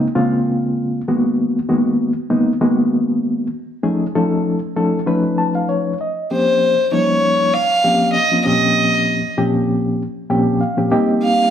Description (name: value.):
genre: jazz.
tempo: 98 BPM.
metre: 4/4.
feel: swing 54% on 16ths.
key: Bb dorian from 6.3 s.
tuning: A4 = 442 Hz.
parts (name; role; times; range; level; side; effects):
reed electric piano; accompaniment; 0.0-11.5 s; Bb2 to A5; -16 LUFS; left 1 dB; overdrive, fast tremolo.
rich violin; melody; 6.3-11.5 s; C5 to F5; -15 LUFS; equal; none.
room: wet large studio reverb, RT60 1.2 s.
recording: band playing live in one room.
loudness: -15 LUFS.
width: side -9 dB against mid.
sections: 0.0-6.3 A section; 6.3-11.5 B section.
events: reed electric piano fill 5.1-6.3, 10.0-11.2.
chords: 0.0 Bbm9; 1.1 Abm9; 3.8 F7b13; 6.3 Bbm69; 8.5 Eb13/Bb; 10.9 Cm7.